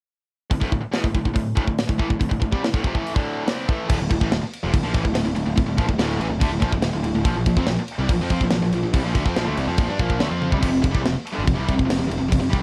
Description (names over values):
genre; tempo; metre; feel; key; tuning
heavy metal; 142 BPM; 4/4; straight; D minor; A4 = 440 Hz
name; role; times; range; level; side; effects
tight distorted guitar; riff; 0.5-12.6 s; D2 to F4; -26 LUFS; equal; distortion
tight metal drum kit; drums; 0.5-12.6 s; crash cymbal, hi-hat, kick drum, snare drum, toms; -25 LUFS; equal; none
fuzz picked electric bass; bass; 3.9-12.6 s; D1 to G2; -28 LUFS; equal; overdrive
room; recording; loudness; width
little or no reverb; dark, warm production; -22 LUFS; mono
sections
0.5-3.9 A section; 3.9-12.6 B section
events
drum fill 10.4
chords
0.5 D5; 3.9 Dm; 7.3 Bb5; 10.6 F5